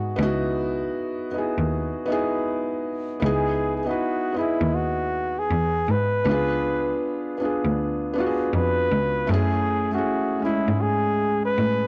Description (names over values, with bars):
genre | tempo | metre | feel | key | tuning
hip hop | 79 BPM | 4/4 | swing 65% on 16ths | unclear | A4 = 440 Hz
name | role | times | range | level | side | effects
breathy flugelhorn | melody | 0.0-11.9 s | E4 to B4 | -27 LUFS | equal | none
felt-muted upright piano | accompaniment | 0.0-11.9 s | G#3 to D#5 | -28 LUFS | equal | none
bright cello | bass | 0.0-11.9 s | C#2 to A2 | -28 LUFS | equal | none
room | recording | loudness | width
light reverb | dry, gritty hardware recording, transformer saturation | -24 LUFS | mono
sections
0.0-3.2 A section; 3.2-11.9 B section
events
none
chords
0.0 C#m9; 6.3 C#7b9; 9.3 F#m9